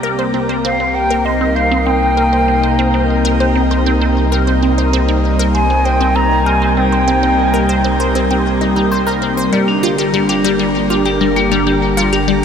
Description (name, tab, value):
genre	ambient, sequencer-driven space music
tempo	98 BPM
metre	4/4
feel	straight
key	C minor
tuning	A4 = 440 Hz
part	lush unison pad	sustained chords	0.0-12.4 s	C3 to Bb4	-16 LUFS	equal	chorus
part	resonant blip pluck	riff	0.0-12.3 s	G3 to C5	-19 LUFS	equal	phaser, tape echo
part	warm sub bass	bass	0.0-12.4 s	G1 to C2	-19 LUFS	equal	none
part	mellow hollow silver concert flute	melody	0.6-8.0 s	Eb5 to Bb5	-19 LUFS	equal	tape echo
part	vibraphone with hard mallets	arpeggios	9.5-12.4 s	Bb3 to Bb4	-17 LUFS	left 1 dB	auto-pan, tape echo
room	wet shimmer reverb, RT60 7.8 s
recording	none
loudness	-12 LUFS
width	side -7 dB against mid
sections	0.0-12.4 A section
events	none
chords	0.0 Cm7; 9.5 Gm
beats	0.34 0.96 1.57 | 2.18 2.79 3.40 4.02 | 4.63 5.24 5.85 6.47 | 7.08 7.69 8.30 8.91 | 9.53 10.14 10.75 11.36 | 11.98